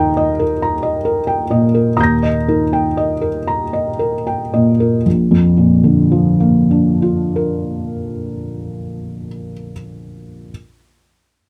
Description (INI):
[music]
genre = neoclassical minimalist piano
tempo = 37-47 BPM (dotted quarters)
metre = 6/8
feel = rubato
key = Bb major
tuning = A4 = 440 Hz
[part]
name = felt-muted upright piano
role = solo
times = 0.0-10.5 s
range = Bb1 to Bb6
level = -16 LUFS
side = equal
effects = none
[sound]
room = little or no reverb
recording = close, detailed microphones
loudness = -15 LUFS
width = mono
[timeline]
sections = 0.0-5.1 A section; 5.1-8.3 B section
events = slowing down 0.0-5.1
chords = 0.0 Eb; 5.1 Bb